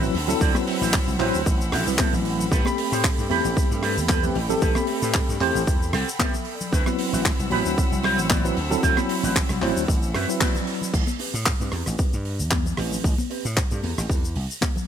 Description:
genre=nu-disco, nu disco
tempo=114 BPM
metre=4/4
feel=swing 54% on 16ths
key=A dorian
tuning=A4 = 445 Hz
part: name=tine electric piano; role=accompaniment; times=0.0-10.9 s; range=F#3 to B5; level=-26 LUFS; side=equal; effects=medium stereo tremolo, sidechain pumping, digital delay
part: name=clear studio string section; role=sustained chords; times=0.0-10.9 s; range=C4 to E6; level=-32 LUFS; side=left 1 dB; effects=sidechain pumping
part: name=electric guitar with an envelope filter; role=riff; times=0.0-14.8 s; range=C4 to G5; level=-29 LUFS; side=right 4 dB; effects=wide subtle chorus, low-pass filter, digital delay
part: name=vintage slap bass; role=bass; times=0.0-14.5 s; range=A1 to A2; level=-27 LUFS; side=equal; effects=none
part: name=damped 70s drum kit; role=drums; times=0.0-14.9 s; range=crash cymbal, handclaps, hi-hat, rim click, shaker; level=-28 LUFS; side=equal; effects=none
part: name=congas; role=percussion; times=0.0-14.9 s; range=none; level=-32 LUFS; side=left 6 dB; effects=none
part: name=electronic kick drum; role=drums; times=0.4-14.7 s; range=none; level=-23 LUFS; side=equal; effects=overdrive
room=little or no reverb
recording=none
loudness=-20 LUFS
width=side -9 dB against mid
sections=0.0-10.9 A section; 10.9-14.9 B section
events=drop 0.0-10.9; clean electric guitar fill 5.7-6.7, 9.9-10.9; band accent 10.4; filter sweep on clean electric guitar 10.9-14.9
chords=0.0 D13; 2.5 Am9; 6.7 D13; 10.9 Am9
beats=| 0.41 0.93 1.46 1.99 | 2.51 3.04 3.57 4.09 | 4.62 5.14 5.67 6.20 | 6.72 7.25 7.78 8.30 | 8.83 9.36 9.88 10.41 | 10.93 11.46 11.99 12.51 | 13.04 13.57 14.09 14.62

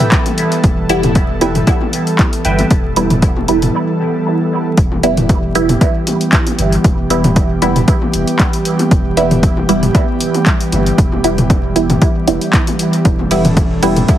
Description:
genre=dub techno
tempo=116 BPM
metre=4/4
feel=swing 54% on 16ths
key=E minor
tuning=A4 = 440 Hz
part: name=airy breathy pad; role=sustained chords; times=0.0-14.2 s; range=E3 to A4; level=-18 LUFS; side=right 1 dB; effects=chorus, sidechain pumping
part: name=filtered dub chord stab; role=riff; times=0.0-2.7, 13.8-14.1 s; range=B4 to G5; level=-24 LUFS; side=right 2 dB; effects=phaser, cassette tape, sidechain pumping, dub echo
part: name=punchy analog drum machine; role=drums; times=0.0-14.2 s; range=handclaps, hi-hat, ride cymbal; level=-21 LUFS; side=left 1 dB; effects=overdrive, dub echo
part: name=electronic toms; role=percussion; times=0.0-14.1 s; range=none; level=-19 LUFS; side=left 1 dB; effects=sidechain pumping on toms, dub echo
part: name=electronic kick drum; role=drums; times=0.1-14.2 s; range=none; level=-12 LUFS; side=equal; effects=overdrive
part: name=pure sine sub bass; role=bass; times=0.6-14.0 s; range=E1 to G1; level=-20 LUFS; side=equal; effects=sidechain pumping
part: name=filtered dub chord stab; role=stabs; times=0.9-14.1 s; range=G3 to E4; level=-18 LUFS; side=right 2 dB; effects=phaser, dub echo
room=light reverb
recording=heavily compressed radio sound, vinyl crackle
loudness=-11 LUFS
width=side -12 dB against mid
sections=0.0-4.8 A section; 4.8-14.2 A section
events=break 3.7-4.8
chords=0.0 Em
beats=0.12 | 0.64 1.16 1.67 2.19 | 2.71 3.22 3.74 4.26 | 4.78 5.29 5.81 6.33 | 6.84 7.36 7.88 8.40 | 8.91 9.43 9.95 10.47 | 10.98 11.50 12.02 12.54 | 13.05 13.57 14.09

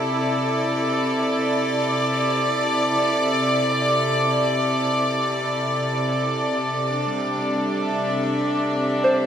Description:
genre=ambient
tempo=free time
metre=none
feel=none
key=C major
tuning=A4 = 440 Hz
part: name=rich chamber string section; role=sustained chords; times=0.0-9.3 s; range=C3 to E5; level=-20 LUFS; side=equal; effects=shimmer reverb
part: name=soft synth bell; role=arpeggios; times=9.0-9.3 s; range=C5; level=-17 LUFS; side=equal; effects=chorus
room=wet cathedral reverb, RT60 6.5 s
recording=none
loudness=-19 LUFS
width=side -9 dB against mid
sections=0.0-6.3 A section; 6.3-9.3 B section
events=none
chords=0.0 Am/C; 6.3 C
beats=free time

